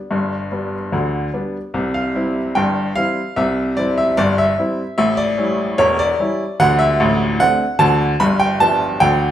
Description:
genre	ragtime piano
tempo	74 BPM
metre	2/4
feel	straight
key	C major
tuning	A4 = 436 Hz
part	bright upright piano	solo	0.0-9.3 s	E1 to B5	-15 LUFS	equal	none
room	wet large studio reverb, RT60 0.9 s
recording	band playing live in one room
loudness	-15 LUFS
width	side -11 dB against mid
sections	0.0-9.3 A section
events	none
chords	0.0 G; 1.7 C; 5.0 A7; 6.6 D5; 8.2 G7

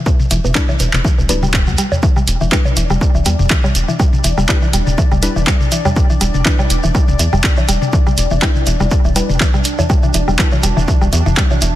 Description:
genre	minimal techno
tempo	122 BPM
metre	4/4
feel	swing 55% on 16ths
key	E minor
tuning	A4 = 440 Hz
part	mallet-like synth pluck	riff	0.1-11.7 s	B2 to B3	-21 LUFS	equal	chorus, sidechain pumping, dub echo
part	electronic kick drum	drums	0.1-11.5 s	none	-14 LUFS	equal	none
part	shekere	percussion	0.1-11.7 s	none	-25 LUFS	right 3 dB	none
part	electronic toms and bongos	percussion	0.2-11.6 s	none	-21 LUFS	left 2 dB	none
part	rubbery square bass	bass	0.3-11.7 s	D1 to E2	-17 LUFS	equal	sidechain pumping
part	punchy analog drum machine	drums	0.3-11.7 s	handclaps, hi-hat	-19 LUFS	equal	none
part	filtered dub chord stab	stabs	0.6-10.5 s	G3 to B4	-25 LUFS	left 2 dB	chorus, dub echo
part	pulsing gated texture	texture	2.4-11.8 s	D4 to D5	-25 LUFS	left 1 dB	chorus, built-in reverb, sidechain pumping
room	digital ambience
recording	dense, heavily limited modern master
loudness	-12 LUFS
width	side -14 dB against mid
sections	0.0-11.8 A section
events	none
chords	0.0 Em7

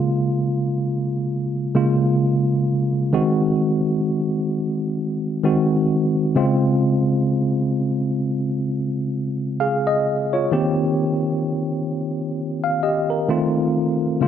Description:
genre	R&B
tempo	65 BPM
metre	4/4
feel	swing 58% on 16ths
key	Bb minor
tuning	A4 = 440 Hz
part	mellow tine electric piano	solo	0.0-14.3 s	Db3 to F5	-18 LUFS	equal	fast stereo tremolo
room	moderate plate reverb, RT60 2.8 s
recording	none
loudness	-18 LUFS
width	side -9 dB against mid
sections	0.0-14.3 A section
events	none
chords	0.0 Bbm7; 3.1 Ab7; 6.4 Dbmaj7; 10.5 Cm7; 13.3 F7

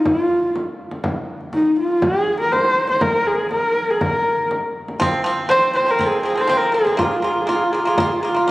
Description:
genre	mongolian traditional, Mongolian folk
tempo	121 BPM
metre	4/4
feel	straight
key	F yu mode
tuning	A4 = 440 Hz
part	dark horsehead fiddle	melody	0.0-8.5 s	Eb4 to C5	-17 LUFS	equal	none
part	frame drum	percussion	0.1-8.5 s	none	-26 LUFS	equal	none
part	pipa	arpeggios	5.0-8.5 s	F3 to F4	-20 LUFS	right 1 dB	none
room	wet concert hall reverb, RT60 2.3 s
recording	recorded on a phone in the room, studio reverb, compression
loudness	-16 LUFS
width	side -18 dB against mid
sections	0.0-8.5 A section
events	none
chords	0.0 N.C.; 5.0 F5; 7.0 Bb5

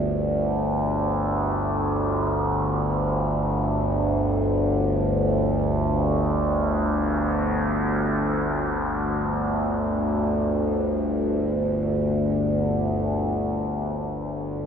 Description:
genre	ambient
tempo	free time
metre	none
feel	none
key	unclear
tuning	A4 = 440 Hz
part	overtone-sweeping drone	solo	0.0-14.7 s	G1 to D2	-22 LUFS	equal	chorus, built-in reverb, ping-pong delay
room	wet cathedral reverb, RT60 5.7 s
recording	none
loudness	-22 LUFS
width	side -7 dB against mid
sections	0.0-13.1 A section; 13.1-14.7 B section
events	none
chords	0.0 G5

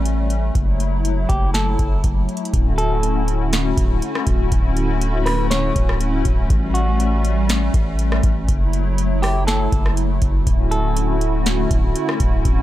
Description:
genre	hip hop, atmospheric cloud-rap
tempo	121 BPM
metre	4/4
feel	half-time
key	D major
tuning	A4 = 436 Hz
part	semi-hollow electric guitar	melody	0.0-12.4 s	F#4 to C#5	-27 LUFS	equal	spring reverb, low-pass filter, tape echo
part	hollow soft pad	sustained chords	0.0-12.6 s	D3 to F#4	-23 LUFS	left 1 dB	ensemble chorus, sidechain pumping
part	long sustained 808-style bass	bass	0.0-12.6 s	D1 to A1	-20 LUFS	equal	none
part	booming analog drum machine	drums	0.1-12.6 s	hi-hat, kick drum, rim click, snare drum	-20 LUFS	equal	overdrive
room	little or no reverb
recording	none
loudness	-16 LUFS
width	side -14 dB against mid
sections	0.0-2.5 A section; 2.5-12.6 B section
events	none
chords	0.0 A7; 0.6 F#m7; 2.5 Dmaj9; 6.5 A7; 8.5 F#m7; 10.5 Dmaj9

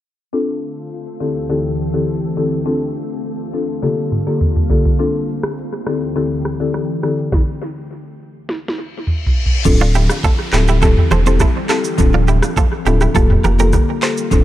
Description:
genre	afrobeats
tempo	103 BPM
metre	4/4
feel	straight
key	D minor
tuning	A4 = 440 Hz
part	buzzing marimba with medium mallets	accompaniment	0.3-14.4 s	D3 to A4	-20 LUFS	left 3 dB	none
part	glassy FM pad	sustained chords	0.3-14.4 s	D2 to A4	-25 LUFS	equal	ensemble chorus, built-in reverb
part	afro-pop drum kit	drums	3.8-14.4 s	crash cymbal, handclaps, hi-hat, kick drum, rim click, shaker, snare drum, toms	-17 LUFS	equal	analog delay
part	reverse cymbal and downlifter	sound effects	8.9-14.3 s	none	-29 LUFS	left 2 dB	none
part	saturated sub bass	bass	9.7-14.4 s	D1 to F1	-15 LUFS	equal	none
part	congas and bongos	percussion	9.7-14.4 s	none	-25 LUFS	right 6 dB	analog delay
part	direct-recorded clean electric guitar	riff	9.8-14.1 s	D4 to C5	-22 LUFS	right 6 dB	analog delay
room	little or no reverb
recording	echo-heavy mix, low-pass filter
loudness	-14 LUFS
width	side -13 dB against mid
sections	0.3-9.7 A section; 9.7-14.4 B section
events	filter sweep 0.3-9.7; drum fill 3.8-5.0, 8.5-9.7; reverse cymbal 8.9-9.7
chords	0.3 Dm7; 1.2 Am7/D; 2.7 Dm7; 3.8 Gm9/D; 5.0 Dm7; 5.9 Am7/D; 7.3 N.C.; 9.7 Dm7; 13.1 Gm9/D

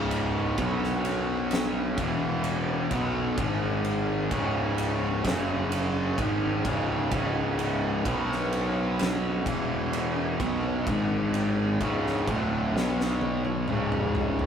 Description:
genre	stoner and doom metal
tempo	64 BPM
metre	4/4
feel	straight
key	C# minor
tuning	A4 = 438 Hz
part	fuzz guitar	riff	0.0-14.5 s	C#2 to B3	-27 LUFS	equal	distortion
part	fuzz picked electric bass	bass	0.0-14.5 s	C#1 to B1	-31 LUFS	equal	overdrive
part	oversized low-tuned drum kit	drums	0.1-14.5 s	kick drum, ride cymbal, snare drum, toms	-31 LUFS	equal	none
room	light reverb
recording	rough rehearsal-room recording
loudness	-25 LUFS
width	side -8 dB against mid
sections	0.0-14.5 A section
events	drum fill 12.7-14.5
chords	0.0 C#5; 0.6 B5; 2.0 E5; 2.9 B5; 3.4 G#5; 4.3 C#5; 5.3 F#5; 6.2 C#5; 8.1 B5; 9.5 E5; 10.4 B5; 10.9 G#5; 11.8 C#5; 12.7 B5; 13.7 C#5

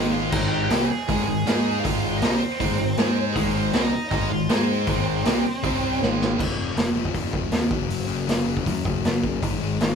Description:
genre	punk rock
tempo	158 BPM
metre	4/4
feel	straight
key	Ab major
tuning	A4 = 440 Hz
part	high-gain lead guitar	melody	0.0-6.0 s	Ab3 to Ab5	-28 LUFS	right 2 dB	distortion
part	sludgy distorted guitar	riff	0.0-9.9 s	F2 to Ab4	-27 LUFS	left 10 dB	overdrive
part	tight distorted guitar	riff	0.0-6.4 s	Ab2 to Ab4	-28 LUFS	right 9 dB	distortion
part	fuzz picked electric bass	bass	0.0-9.9 s	F1 to Ab2	-30 LUFS	equal	overdrive
part	raw garage drum kit	drums	0.3-9.9 s	crash cymbal, hi-hat, kick drum, snare drum	-24 LUFS	right 1 dB	none
room	light reverb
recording	band playing live in one room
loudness	-20 LUFS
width	side -6 dB against mid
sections	0.0-6.4 A section; 6.4-9.9 B section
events	drum fill 6.0-6.4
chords	0.0 Ab; 5.6 C5; 6.0 Ab5; 6.4 F5; 7.7 Gb5; 9.4 Ab5

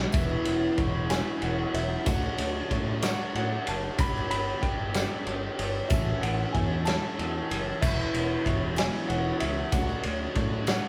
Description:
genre	folk rock and heartland rock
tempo	63 BPM (dotted quarters)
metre	6/8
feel	straight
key	unclear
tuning	A4 = 440 Hz
part	picked twelve-string acoustic guitar	accompaniment	0.0-10.9 s	E2 to A4	-37 LUFS	equal	none
part	tonewheel organ	sustained chords	0.0-10.9 s	B3 to B5	-48 LUFS	equal	none
part	crunchy overdriven guitar	riff	0.0-10.9 s	E2 to A4	-39 LUFS	equal	none
part	fingered electric bass	bass	0.0-10.8 s	E1 to A2	-35 LUFS	equal	none
part	clear concert grand piano	melody	0.1-10.9 s	E5 to B5	-38 LUFS	equal	none
part	loose indie drum kit	drums	0.1-10.8 s	crash cymbal, kick drum, ride cymbal, snare drum	-31 LUFS	equal	none
part	tambourine	percussion	0.1-10.8 s	none	-50 LUFS	equal	none
room	light reverb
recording	band playing live in one room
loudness	-28 LUFS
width	mono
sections	0.1-10.9 A section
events	none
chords	0.1 Esus2; 2.1 D; 4.0 G6; 5.9 A; 7.8 Esus2; 9.7 D

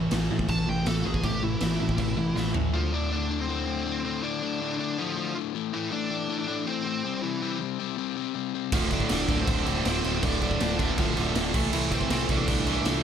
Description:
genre	punk rock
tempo	160 BPM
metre	4/4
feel	straight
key	D minor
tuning	A4 = 441 Hz
part	distorted electric guitar	riff	0.0-2.7, 8.7-13.0 s	D2 to A3	-36 LUFS	equal	overdrive
part	overdriven electric guitar	riff	0.0-13.0 s	D2 to C4	-30 LUFS	left 12 dB	none
part	overdriven semi-hollow guitar	riff	0.0-2.7, 8.7-13.0 s	D2 to A3	-30 LUFS	right 10 dB	none
part	growling picked electric bass	bass	0.0-2.7, 8.7-13.0 s	D1 to A2	-31 LUFS	right 1 dB	overdrive
part	raw garage drum kit	drums	0.1-2.6, 8.7-12.9 s	crash cymbal, kick drum, snare drum, toms	-29 LUFS	right 1 dB	none
part	bluesy overdriven lead guitar	melody	0.5-13.0 s	E3 to A5	-32 LUFS	right 1 dB	distortion, ping-pong delay
room	light reverb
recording	none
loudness	-25 LUFS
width	side -8 dB against mid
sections	0.0-2.7 A section; 2.7-13.0 B section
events	lead electric guitar solo 0.0-2.7; drum fill 2.4-2.7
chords	0.0 A5; 2.7 Dm; 5.5 Am; 7.0 C; 8.7 Dm; 11.5 Am/C

